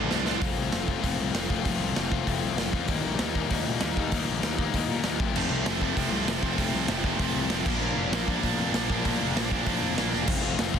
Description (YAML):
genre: punk rock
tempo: 195 BPM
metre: 4/4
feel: straight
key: F major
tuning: A4 = 442 Hz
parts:
  - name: biting overdriven guitar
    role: riff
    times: 0.0-10.8 s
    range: F2 to F4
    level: -29 LUFS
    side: left 11 dB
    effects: none
  - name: tight distorted guitar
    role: riff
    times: 0.0-0.4, 5.4-10.3 s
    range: F2 to F4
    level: -30 LUFS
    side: right 17 dB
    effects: distortion
  - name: fuzz picked electric bass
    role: bass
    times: 0.0-10.8 s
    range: E1 to Bb2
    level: -32 LUFS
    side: right 1 dB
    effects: overdrive
  - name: raw garage drum kit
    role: drums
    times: 0.1-10.8 s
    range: crash cymbal, hi-hat, kick drum, snare drum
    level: -29 LUFS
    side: right 1 dB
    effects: none
room: light reverb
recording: dense, heavily limited modern master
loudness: -24 LUFS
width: side -8 dB against mid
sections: 0.4-10.3 A section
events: drum fill 0.0-0.4, 10.1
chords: 0.4 F; 2.9 Eb; 5.2 F; 7.7 Bb; 10.3 F